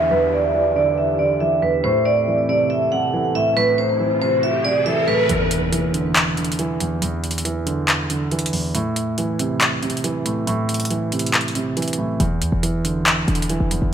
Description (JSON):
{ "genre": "hip hop, trap", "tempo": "139 BPM", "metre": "4/4", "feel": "half-time", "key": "unclear", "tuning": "A4 = 440 Hz", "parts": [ { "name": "vibraphone with hard mallets", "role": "melody", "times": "0.0-5.3 s", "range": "B4 to F#5", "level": "-18 LUFS", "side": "right 2 dB", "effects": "low-pass filter" }, { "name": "dark concert grand piano", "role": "accompaniment", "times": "0.0-13.9 s", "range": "E2 to E3", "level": "-22 LUFS", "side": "right 1 dB", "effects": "low-pass filter" }, { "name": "sweeping resonant pad", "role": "sustained chords", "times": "0.0-5.3 s", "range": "C4 to E5", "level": "-26 LUFS", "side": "left 2 dB", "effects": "chorus, phaser, low-pass filter" }, { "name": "downlifter, riser and impact", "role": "sound effects", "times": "0.0-7.0 s", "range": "none", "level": "-27 LUFS", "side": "left 1 dB", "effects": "none" }, { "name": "booming analog drum machine", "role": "drums", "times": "5.3-13.8 s", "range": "handclaps, hi-hat", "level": "-21 LUFS", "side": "equal", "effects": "none" }, { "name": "short 808-style bass", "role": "bass", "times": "12.2-13.9 s", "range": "E1 to E2", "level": "-22 LUFS", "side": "left 1 dB", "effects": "none" } ], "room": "moderate lush hall reverb, RT60 1.8 s", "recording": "none", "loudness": "-17 LUFS", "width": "side -8 dB against mid", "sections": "0.0-5.3 A section; 5.3-13.9 B section", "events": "filter sweep 0.0-5.3; riser 1.8-5.3; break 5.3-12.2; impact 5.3-7.0", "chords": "0.0 Em7; 1.8 Am7; 5.3 Dsus2/E; 8.7 Am; 12.2 Dsus2/E" }